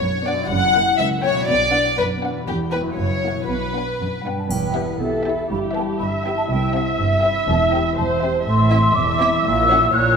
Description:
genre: cinematic, playful, whimsical film cue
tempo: 122 BPM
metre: 2/4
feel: straight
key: B minor, E minor from 4.5 s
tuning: A4 = 438 Hz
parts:
  - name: warm studio violin section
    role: second line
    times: 0.0-9.8 s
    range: B3 to F#5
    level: -22 LUFS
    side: left 2 dB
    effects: none
  - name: concert harp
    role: arpeggios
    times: 0.0-10.2 s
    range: E2 to C#5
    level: -27 LUFS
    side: left 6 dB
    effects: none
  - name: dark chamber cello section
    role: bass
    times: 0.0-10.2 s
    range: C2 to B2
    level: -24 LUFS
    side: right 2 dB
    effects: none
  - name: rich chamber violin section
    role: melody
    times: 0.3-9.8 s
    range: C#5 to G5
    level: -32 LUFS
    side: left 3 dB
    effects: none
  - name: dark symphonic viola section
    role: accompaniment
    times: 0.3-10.2 s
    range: A#3 to E5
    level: -24 LUFS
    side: right 2 dB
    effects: none
  - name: warm chamber double bass section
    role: bass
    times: 0.5-10.2 s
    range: E1 to C2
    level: -26 LUFS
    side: right 3 dB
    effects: none
  - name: mellow large flute ensemble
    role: second line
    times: 4.3-10.2 s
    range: E5 to F#6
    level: -21 LUFS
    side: left 1 dB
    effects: none
  - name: triangle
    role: percussion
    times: 4.5-5.5 s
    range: none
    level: -35 LUFS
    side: left 1 dB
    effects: none
room: wet scoring stage reverb, RT60 1.8 s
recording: minimal, uncompressed stereo recording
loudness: -17 LUFS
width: side -6 dB against mid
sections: 0.0-4.5 A section; 4.5-10.2 B section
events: none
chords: 0.5 F#7b9; 1.5 Bm; 2.5 Em; 3.0 F#7; 3.5 Bm; 4.5 Em; 5.5 Em/G; 6.5 C; 7.5 C/E; 8.5 Am; 9.4 F#7/A#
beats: 0.01 | 0.50 0.99 | 1.48 1.98 | 2.48 2.98 | 3.49 4.00 | 4.50 5.00 | 5.50 6.00 | 6.49 6.99 | 7.48 7.97 | 8.46 8.95 | 9.44 9.93

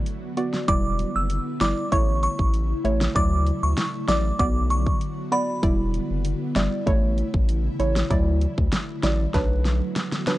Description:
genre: dancehall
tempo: 97 BPM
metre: 4/4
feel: straight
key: E dorian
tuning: A4 = 440 Hz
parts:
  - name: soft round pluck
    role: accompaniment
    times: 0.0-10.4 s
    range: F#3 to D5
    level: -27 LUFS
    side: right 1 dB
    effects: chorus
  - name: ethereal airy pad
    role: sustained chords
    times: 0.0-10.4 s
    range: D3 to E4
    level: -31 LUFS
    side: equal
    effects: ensemble chorus, built-in reverb, sidechain pumping
  - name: pop drum kit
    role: drums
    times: 0.1-10.4 s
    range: hi-hat, kick drum, snare drum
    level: -25 LUFS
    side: equal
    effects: none
  - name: glassy synth bell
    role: melody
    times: 0.7-5.4 s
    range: B5 to E6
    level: -27 LUFS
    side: right 1 dB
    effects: chorus
  - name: round analog bass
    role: bass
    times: 0.7-9.8 s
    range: E1 to D2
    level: -24 LUFS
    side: equal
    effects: none
room: little or no reverb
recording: dry, gritty hardware recording, cassette tape, nothing above 10.7 kHz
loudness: -20 LUFS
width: side -16 dB against mid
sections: 0.0-10.4 A section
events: drum fill 9.3-10.4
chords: 0.0 Bm; 0.7 Em7; 1.9 A; 3.2 Dadd9; 4.4 Bm; 5.6 Em7; 6.9 A; 8.1 Dadd9; 9.3 Bm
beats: 0.06 | 0.68 1.30 1.92 2.54 | 3.16 3.78 4.39 5.01 | 5.63 6.25 6.87 7.49 | 8.11 8.72 9.34 9.96

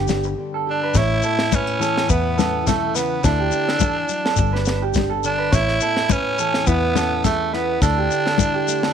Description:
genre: highlife guitar band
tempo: 105 BPM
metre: 4/4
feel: swing 54% on 16ths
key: A mixolydian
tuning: A4 = 440 Hz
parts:
  - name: nylon-string guitar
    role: accompaniment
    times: 0.0-8.9 s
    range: E2 to G4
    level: -26 LUFS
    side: left 9 dB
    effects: none
  - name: electric guitar through a small old amp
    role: arpeggios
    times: 0.0-8.9 s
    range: G4 to C#5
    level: -24 LUFS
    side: right 11 dB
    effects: slapback echo
  - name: fingered electric bass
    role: bass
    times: 0.0-8.1 s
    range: G1 to E2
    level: -23 LUFS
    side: left 1 dB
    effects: none
  - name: tight funk drum kit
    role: drums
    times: 0.1-8.9 s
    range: kick drum, snare drum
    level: -24 LUFS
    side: equal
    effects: none
  - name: congas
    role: percussion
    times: 0.1-8.8 s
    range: none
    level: -24 LUFS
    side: left 13 dB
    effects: none
  - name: shekere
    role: percussion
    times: 0.1-8.8 s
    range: none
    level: -25 LUFS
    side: left 7 dB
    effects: none
  - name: raspy tenor saxophone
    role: melody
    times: 0.7-8.9 s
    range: A3 to E4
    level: -22 LUFS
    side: right 1 dB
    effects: none
room: light reverb, studio reverb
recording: 1960s-style stereo with parts hard left and right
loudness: -17 LUFS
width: side -8 dB against mid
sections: 1.0-8.9 A section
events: break 0.4-1.0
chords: 0.0 Gadd9; 1.0 Aadd9; 3.2 Dsus2; 4.4 Gadd9; 5.5 Aadd9; 7.8 Dsus2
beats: 0.38 | 0.95 1.53 2.10 2.67 | 3.24 3.82 4.39 4.96 | 5.53 6.11 6.68 7.25 | 7.82 8.40

